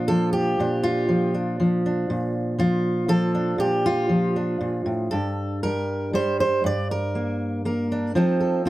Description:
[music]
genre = folk, solo fingerstyle acoustic guitar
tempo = 119 BPM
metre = 3/4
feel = straight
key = Bb major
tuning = A4 = 444 Hz
[part]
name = fingerpicked steel-string acoustic guitar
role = solo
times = 0.0-8.7 s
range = G2 to D5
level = -21 LUFS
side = equal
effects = none
[sound]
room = light reverb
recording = dark, warm production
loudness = -21 LUFS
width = side -16 dB against mid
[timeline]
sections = 0.0-8.7 A section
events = none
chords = 0.0 Bbmaj7; 5.1 Gmadd9; 8.2 F7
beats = 0.09 | 0.59 1.09 1.59 | 2.09 2.59 3.09 | 3.59 4.10 4.61 | 5.12 5.64 6.14 | 6.65 7.16 7.67 | 8.17 8.67

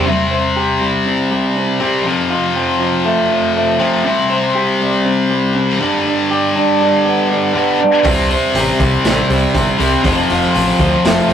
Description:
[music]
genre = quiet-loud alternative rock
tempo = 120 BPM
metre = 4/4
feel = straight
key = unclear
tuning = A4 = 443 Hz
[part]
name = scooped high-gain guitar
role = riff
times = 0.0-11.3 s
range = F2 to C4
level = -16 LUFS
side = left 3 dB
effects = distortion
[part]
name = tight distorted guitar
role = riff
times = 0.0, 8.0-11.3 s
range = F2 to C4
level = -21 LUFS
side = right 4 dB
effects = distortion
[part]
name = electric guitar through a small old amp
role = arpeggios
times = 0.1-11.3 s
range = F2 to C5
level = -16 LUFS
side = right 1 dB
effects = tape echo
[part]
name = deep dub picked electric bass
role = bass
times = 8.0-11.3 s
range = F1 to D2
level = -21 LUFS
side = right 1 dB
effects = none
[part]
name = raw garage drum kit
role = drums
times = 8.0-11.3 s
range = hi-hat, kick drum, snare drum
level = -20 LUFS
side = right 1 dB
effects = none
[sound]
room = moderate studio reverb, RT60 0.6 s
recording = rough rehearsal-room recording, tube saturation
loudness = -12 LUFS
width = side -8 dB against mid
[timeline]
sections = 0.1-11.3 A section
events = none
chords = 0.1 C5; 2.1 F; 4.1 C5; 5.8 G; 8.0 C5; 10.0 F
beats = | 0.06 0.56 1.06 1.55 | 2.05 2.55 3.05 3.55 | 4.05 4.55 5.05 5.55 | 6.05 6.55 7.05 7.55 | 8.05 8.55 9.05 9.54 | 10.04 10.54 11.04

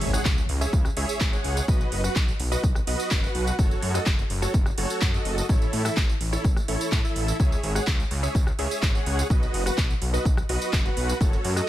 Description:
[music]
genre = EDM, festival progressive house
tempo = 126 BPM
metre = 4/4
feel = straight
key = unclear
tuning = A4 = 440 Hz
[part]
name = dense compressed supersaw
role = riff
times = 0.0-11.7 s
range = E4 to F#5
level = -29 LUFS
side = right 1 dB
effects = sidechain pumping, ping-pong delay
[part]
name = detuned saw bass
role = bass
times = 0.0-11.6 s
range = F#1 to A2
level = -28 LUFS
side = equal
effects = sidechain pumping
[part]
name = house drum kit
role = drums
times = 0.0-11.7 s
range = handclaps, hi-hat, rim click, tambourine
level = -30 LUFS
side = right 1 dB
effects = none
[part]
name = impact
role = sound effects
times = 0.0-1.7 s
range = none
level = -34 LUFS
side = equal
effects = none
[part]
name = electronic kick drum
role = drums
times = 0.3-11.3 s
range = none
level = -23 LUFS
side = equal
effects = none
[sound]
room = little or no reverb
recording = none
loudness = -22 LUFS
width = side -13 dB against mid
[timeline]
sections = 0.0-11.7 A section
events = impact 0.0-1.7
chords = 0.0 C#m; 1.7 B; 3.6 F#m; 5.5 A; 7.4 C#m; 9.3 B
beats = 0.25 0.73 1.21 | 1.68 2.16 2.63 3.11 | 3.59 4.06 4.54 5.02 | 5.49 5.97 6.45 6.92 | 7.40 7.87 8.35 8.83 | 9.30 9.78 10.25 10.73 | 11.21 11.68

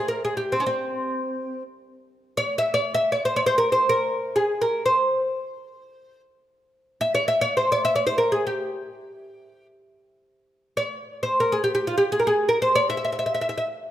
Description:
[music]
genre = Persian modal ensemble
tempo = free time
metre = none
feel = none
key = C dastgah homayun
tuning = A4 = 440 Hz
[part]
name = oud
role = solo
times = 0.0-13.6 s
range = C4 to E5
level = -21 LUFS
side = equal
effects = none
[sound]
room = moderate recital hall reverb, RT60 1.7 s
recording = none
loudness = -21 LUFS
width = side -12 dB against mid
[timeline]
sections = 0.0-1.9 A section; 1.9-13.9 A section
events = none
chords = none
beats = free time

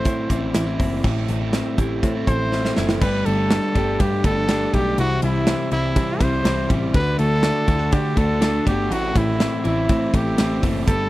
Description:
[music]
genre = jangly indie pop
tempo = 122 BPM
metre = 4/4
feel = straight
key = unclear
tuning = A4 = 442 Hz
[part]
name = warm trumpet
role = melody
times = 0.0-11.1 s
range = E4 to C5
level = -24 LUFS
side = equal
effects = tube saturation, tape echo
[part]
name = overdriven electric guitar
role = accompaniment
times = 0.0-11.1 s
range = A2 to G4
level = -27 LUFS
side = right 4 dB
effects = none
[part]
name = direct-recorded clean electric guitar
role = arpeggios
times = 0.0-11.1 s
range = A2 to G4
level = -25 LUFS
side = left 4 dB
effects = tape echo
[part]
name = picked electric bass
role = bass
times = 0.1-11.1 s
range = F#1 to D3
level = -24 LUFS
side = equal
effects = none
[part]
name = modern studio drum kit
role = drums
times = 0.1-11.0 s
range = crash cymbal, hi-hat, kick drum, ride cymbal, snare drum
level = -23 LUFS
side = equal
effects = none
[part]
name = vibraphone with medium hard mallets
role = second line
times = 1.1-3.0 s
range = E4 to A4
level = -33 LUFS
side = right 6 dB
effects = tape echo
[sound]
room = little or no reverb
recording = none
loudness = -18 LUFS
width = side -17 dB against mid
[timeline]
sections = 0.0-1.0 A section; 1.0-3.0 B section; 3.0-11.1 C section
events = drum fill 2.5-3.0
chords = 0.0 Am; 3.0 Gsus2; 5.0 C; 6.9 D; 8.9 Am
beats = 0.06 0.55 | 1.05 1.54 2.03 2.52 | 3.02 3.51 4.00 4.49 | 4.98 5.47 5.96 6.46 | 6.95 7.44 7.93 8.42 | 8.91 9.40 9.89 10.38 | 10.87

